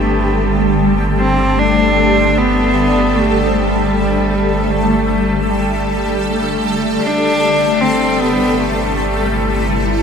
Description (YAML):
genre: ambient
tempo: 77 BPM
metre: 4/4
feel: straight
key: unclear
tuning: A4 = 444 Hz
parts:
  - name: rich cello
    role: melody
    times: 0.0-9.8 s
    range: G3 to D4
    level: -16 LUFS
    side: equal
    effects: diffuse ambient delay
  - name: shimmering ambient pad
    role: sustained chords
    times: 0.0-10.0 s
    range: C3 to A4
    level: -16 LUFS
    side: left 1 dB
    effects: chorus, built-in reverb, phaser
  - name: large celesta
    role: arpeggios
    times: 0.0-10.0 s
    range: D4 to D5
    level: -29 LUFS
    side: equal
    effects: none
  - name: warm sub bass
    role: bass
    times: 0.0-10.0 s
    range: G1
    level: -22 LUFS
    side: equal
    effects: none
  - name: wind-like tuned noise texture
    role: texture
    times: 0.0-10.0 s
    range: A5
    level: -27 LUFS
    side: right 1 dB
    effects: built-in reverb
room: wet huge ambient reverb, RT60 8.6 s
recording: none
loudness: -12 LUFS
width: side -6 dB against mid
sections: 0.0-10.0 A section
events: fade-out on synth texture 0.0-10.0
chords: 0.0 Gsus2; 7.0 Am7/G